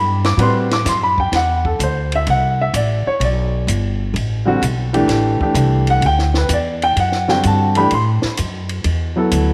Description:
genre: modal jazz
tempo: 128 BPM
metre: 4/4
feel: swing 68% on 8ths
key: A dorian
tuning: A4 = 439 Hz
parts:
  - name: warm baby grand piano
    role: accompaniment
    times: 0.0-9.5 s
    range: D3 to D6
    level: -19 LUFS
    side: equal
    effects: none
  - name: upright bass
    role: bass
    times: 0.0-9.5 s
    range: G1 to A2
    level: -20 LUFS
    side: equal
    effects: none
  - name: compact cocktail drum kit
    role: drums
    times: 0.2-9.5 s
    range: hi-hat, kick drum, ride cymbal, snare drum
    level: -28 LUFS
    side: equal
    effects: none
room: moderate echo chamber reverb, RT60 1.9 s, small room ambience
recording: none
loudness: -17 LUFS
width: mono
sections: 0.0-9.5 A section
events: none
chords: 0.0 Am9; 4.1 Gsus2/A; 7.9 Amadd9

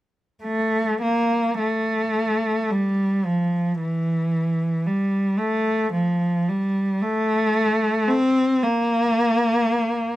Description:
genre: classical, free, expressive piece for unaccompanied cello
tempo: 55 BPM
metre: 3/4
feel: rubato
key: unclear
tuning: A4 = 440 Hz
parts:
  - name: rich cello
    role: solo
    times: 0.4-10.2 s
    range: E3 to C4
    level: -19 LUFS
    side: equal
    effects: none
room: little or no reverb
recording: close, detailed microphones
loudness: -19 LUFS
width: side -15 dB against mid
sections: 0.4-10.2 A section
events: none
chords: none

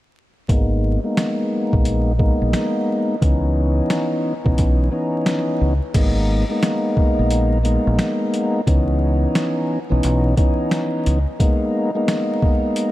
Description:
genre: hip hop, boom-bap hip-hop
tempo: 88 BPM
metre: 4/4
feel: swing 63% on 16ths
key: G# minor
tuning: A4 = 439 Hz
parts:
  - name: tonewheel organ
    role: accompaniment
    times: 0.5-12.9 s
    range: E3 to D#4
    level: -20 LUFS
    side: left 1 dB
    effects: overdrive, slow rotary speaker, high-pass filter, low-pass filter, dub echo
  - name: deep dub fingered electric bass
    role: bass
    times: 0.5-11.2 s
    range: G#1 to C#2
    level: -19 LUFS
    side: equal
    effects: none
  - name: boom bap sampler-style drum kit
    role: drums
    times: 0.5-12.9 s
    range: crash cymbal, hi-hat, kick drum, snare drum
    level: -20 LUFS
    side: equal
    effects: none
room: light reverb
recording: echo-heavy mix, vinyl crackle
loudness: -16 LUFS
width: side -16 dB against mid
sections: 0.5-5.9 A section; 5.9-12.9 B section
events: filter sweep on tonewheel organ 0.5-5.9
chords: 0.5 G#madd9; 3.2 C#m9; 5.9 G#madd9; 8.7 C#m9; 11.4 G#madd9

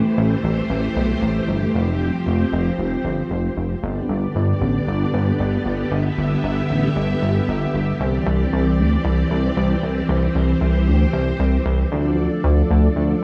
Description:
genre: synth-pop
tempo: 115 BPM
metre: 4/4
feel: straight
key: unclear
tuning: A4 = 440 Hz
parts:
  - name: string machine, cellos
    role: sustained chords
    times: 0.0-13.2 s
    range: D3 to E5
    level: -24 LUFS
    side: equal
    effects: ensemble chorus
  - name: chorused synth bass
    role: bass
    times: 0.0-13.1 s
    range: F1 to D2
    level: -22 LUFS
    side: equal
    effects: none
room: light reverb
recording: none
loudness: -20 LUFS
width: mono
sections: 0.0-3.8 A section; 3.8-13.2 B section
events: none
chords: 0.0 Am7; 1.7 Fsus2; 3.8 G; 8.0 Cadd9; 11.9 Dm

